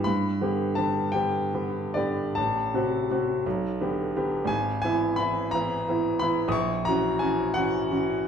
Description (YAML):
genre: classical, romantic character piece for solo piano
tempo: 47-60 BPM (dotted quarters)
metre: 6/8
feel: rubato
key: unclear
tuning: A4 = 445 Hz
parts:
  - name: bright grand piano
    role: solo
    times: 0.0-8.3 s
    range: G#1 to D#6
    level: -24 LUFS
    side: equal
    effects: none
room: wet stone room reverb, RT60 1.3 s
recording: dark, warm production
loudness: -24 LUFS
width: side -7 dB against mid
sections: 0.0-8.3 A section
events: none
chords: 0.1 G; 2.4 F#dim/A; 3.5 G/B; 4.5 E/G#; 6.5 F#7/A#